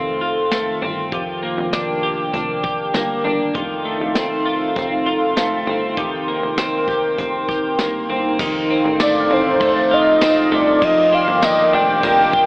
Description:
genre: dream pop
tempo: 99 BPM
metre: 4/4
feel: straight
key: F mixolydian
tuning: A4 = 443 Hz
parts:
  - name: warbly tape-like pad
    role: sustained chords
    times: 0.0-12.5 s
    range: Eb3 to D6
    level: -20 LUFS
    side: equal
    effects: chorus, built-in reverb
  - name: twelve-string electric guitar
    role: arpeggios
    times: 0.0-12.5 s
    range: Eb3 to G4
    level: -21 LUFS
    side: equal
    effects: lush chorus, tape echo
  - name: plucky analog bass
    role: bass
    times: 0.0-12.5 s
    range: F1 to A1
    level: -30 LUFS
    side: equal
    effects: none
  - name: jazz brush drum kit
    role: drums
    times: 0.5-12.5 s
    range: crash cymbal, hi-hat, kick drum, ride cymbal, snare drum, tambourine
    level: -24 LUFS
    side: equal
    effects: none
  - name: warm velvety synth lead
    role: melody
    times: 9.0-12.5 s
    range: C5 to G5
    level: -15 LUFS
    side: equal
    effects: chorus
  - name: glockenspiel with soft plastic mallets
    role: texture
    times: 9.0-12.4 s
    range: C6 to F6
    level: -26 LUFS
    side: equal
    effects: tape echo
room: moderate huge ambient reverb, RT60 4.9 s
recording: AM radio sound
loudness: -15 LUFS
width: side -26 dB against mid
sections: 0.0-8.4 A section; 8.4-12.5 B section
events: none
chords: 0.0 F7; 1.1 Ebmaj7/F; 3.5 F7; 6.0 Cm7/F; 8.4 F7; 10.8 Ebmaj7/F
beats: 0.52 | 1.12 1.73 2.34 2.94 | 3.55 4.16 4.76 5.37 | 5.97 6.58 7.18 7.79 | 8.40 9.00 9.61 10.22 | 10.82 11.43 12.03

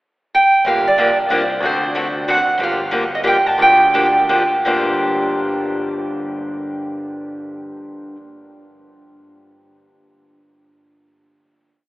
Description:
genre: acoustic string swing (jazz manouche)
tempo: 158-186 BPM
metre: 3/4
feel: swing 61% on 8ths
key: G minor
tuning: A4 = 440 Hz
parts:
  - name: picked steel-string acoustic guitar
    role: melody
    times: 0.3-4.3 s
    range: C5 to A5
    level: -15 LUFS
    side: right 1 dB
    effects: none
  - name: modern bright picked electric bass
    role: bass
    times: 0.6-7.7 s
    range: G1 to D2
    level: -29 LUFS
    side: equal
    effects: none
  - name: picked steel-string acoustic guitar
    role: accompaniment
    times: 0.7-8.2 s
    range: G2 to A4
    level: -20 LUFS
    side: left 1 dB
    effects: none
room: wet cathedral reverb, RT60 6.7 s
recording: recorded in a church or concert hall, telephone sound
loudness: -14 LUFS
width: side -18 dB against mid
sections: 0.0-0.7 pickup bar; 0.7-4.7 A section; 4.7-6.9 final chord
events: slowing down 2.6-4.7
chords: 0.0 N.C.; 0.7 Gm7; 1.6 D7; 2.6 Gm7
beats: 0.01 0.33 | 0.65 0.98 1.30 | 1.62 1.95 2.27 | 2.60 2.92 3.25 | 3.59 3.93 4.29 | 4.66 5.04 5.42 | 5.80 6.18 6.57

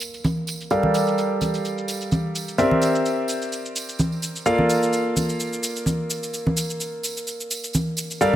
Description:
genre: piano house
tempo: 128 BPM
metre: 4/4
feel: swing 55% on 16ths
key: Bb lydian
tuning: A4 = 442 Hz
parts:
  - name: clear concert grand piano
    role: riff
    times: 0.0-8.4 s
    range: G3 to F5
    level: -23 LUFS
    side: equal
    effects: low-pass filter, digital delay
  - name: cabasa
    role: drums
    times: 0.0-8.3 s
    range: none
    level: -30 LUFS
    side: equal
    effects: low-pass filter on hats, low-pass filter on perc, low-pass filter on snare, low-pass filter on room
  - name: tambourine and congas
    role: percussion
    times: 0.0-8.4 s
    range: none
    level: -26 LUFS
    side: right 1 dB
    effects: none
room: light reverb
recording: none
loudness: -21 LUFS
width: side -12 dB against mid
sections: 0.0-8.4 A section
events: filter sweep on grand piano 0.0-8.4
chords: 0.0 Bbmaj7; 0.7 Gm9; 2.6 C9; 4.5 Bbmaj7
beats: 0.24 | 0.71 1.18 1.65 2.12 | 2.58 3.05 3.52 3.99 | 4.46 4.93 5.40 5.87 | 6.33 6.80 7.27 7.74 | 8.21

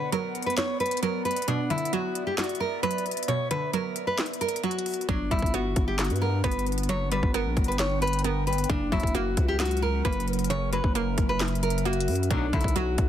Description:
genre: hip hop, trap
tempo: 133 BPM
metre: 4/4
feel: half-time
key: B harmonic minor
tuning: A4 = 440 Hz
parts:
  - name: nylon-string guitar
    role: melody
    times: 0.0-13.1 s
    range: D4 to C#5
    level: -28 LUFS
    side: equal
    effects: ping-pong delay
  - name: hollow square pluck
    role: accompaniment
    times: 0.0-13.1 s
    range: B2 to B3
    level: -32 LUFS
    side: right 4 dB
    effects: chorus
  - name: warbly tape-like pad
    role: sustained chords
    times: 0.0-13.1 s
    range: F#3 to G5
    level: -35 LUFS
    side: right 1 dB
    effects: chorus, built-in reverb, phaser
  - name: trap drum kit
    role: drums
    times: 0.1-13.1 s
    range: handclaps, hi-hat, kick drum, snare drum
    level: -29 LUFS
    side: equal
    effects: none
  - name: growling 808-style bass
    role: bass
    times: 5.1-13.1 s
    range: F#1 to G2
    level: -28 LUFS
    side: equal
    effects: none
  - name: warm brass ensemble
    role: stabs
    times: 12.3-12.4 s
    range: D2 to F#3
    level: -38 LUFS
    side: left 8 dB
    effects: ping-pong delay
room: digital ambience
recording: dense, heavily limited modern master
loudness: -24 LUFS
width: side -10 dB against mid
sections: 0.0-12.3 A section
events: break 0.0-5.1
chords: 0.0 Bm; 5.1 Gmaj7; 8.7 F#; 12.3 Bm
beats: 0.12 0.57 1.03 | 1.48 1.93 2.38 2.83 | 3.28 3.73 4.18 4.64 | 5.09 5.54 5.99 6.44 | 6.89 7.34 7.79 8.24 | 8.70 9.15 9.60 10.05 | 10.50 10.95 11.40 11.85 | 12.30 12.76

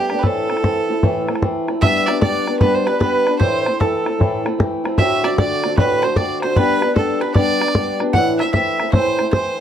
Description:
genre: celtic folk, Celtic hornpipe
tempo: 152 BPM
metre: 4/4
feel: swing 65% on 8ths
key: A dorian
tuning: A4 = 440 Hz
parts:
  - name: clear fiddle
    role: melody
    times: 0.0-9.6 s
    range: G4 to F#5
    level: -20 LUFS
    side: right 3 dB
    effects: none
  - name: bowl-back mandolin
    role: second line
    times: 0.0-9.6 s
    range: G4 to F#5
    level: -26 LUFS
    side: right 2 dB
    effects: none
  - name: picked old ladder-braced acoustic guitar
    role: accompaniment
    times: 0.0-9.6 s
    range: D2 to G4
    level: -20 LUFS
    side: left 2 dB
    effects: none
  - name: bodhran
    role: percussion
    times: 0.1-9.4 s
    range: none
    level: -18 LUFS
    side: left 1 dB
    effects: none
room: moderate small room reverb, RT60 0.5 s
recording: none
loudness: -15 LUFS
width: side -9 dB against mid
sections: 0.0-1.8 A section; 1.8-9.6 A section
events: none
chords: 0.2 Am; 1.8 G; 3.4 Am; 5.0 D7; 6.6 G; 8.1 Am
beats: | 0.24 0.64 1.03 1.43 | 1.82 2.22 2.61 3.01 | 3.40 3.80 4.19 4.59 | 4.98 5.38 5.77 6.17 | 6.56 6.96 7.35 7.75 | 8.14 8.54 8.93 9.32

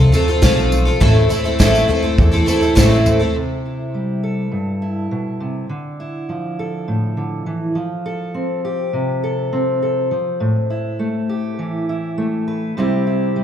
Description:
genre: indie folk with a building arrangement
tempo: 102 BPM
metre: 4/4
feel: straight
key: C major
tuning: A4 = 441 Hz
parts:
  - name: fingerpicked steel-string acoustic guitar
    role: accompaniment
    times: 0.0-13.4 s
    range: G2 to B4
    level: -19 LUFS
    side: equal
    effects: none
  - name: picked twelve-string acoustic guitar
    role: accompaniment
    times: 0.0-3.4 s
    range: A2 to A4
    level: -17 LUFS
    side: left 1 dB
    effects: wide subtle chorus, slapback echo
  - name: upright bass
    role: bass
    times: 0.0-3.2 s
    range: A1 to E2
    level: -16 LUFS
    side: equal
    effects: none
  - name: unplugged drum kit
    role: drums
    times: 0.1-3.2 s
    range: kick drum, snare drum, toms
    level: -17 LUFS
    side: equal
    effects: none
  - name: tambourine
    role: percussion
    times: 0.1-3.2 s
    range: none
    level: -32 LUFS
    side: right 6 dB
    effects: none
room: light reverb, small room ambience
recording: live gig heard through the venue's PA, club reverb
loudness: -16 LUFS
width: side -10 dB against mid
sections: 0.0-3.4 A section; 3.4-13.4 B section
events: none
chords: 0.0 F; 1.0 Am; 3.4 C; 5.7 Dmadd9; 7.8 F; 10.4 A5; 12.8 C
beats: 0.42 | 1.01 1.59 2.18 2.77 | 3.35 3.94 4.53 5.11 | 5.70 6.29 6.88 7.47 | 8.06 8.64 9.23 9.82 | 10.41 11.00 11.59 12.18 | 12.76 13.35

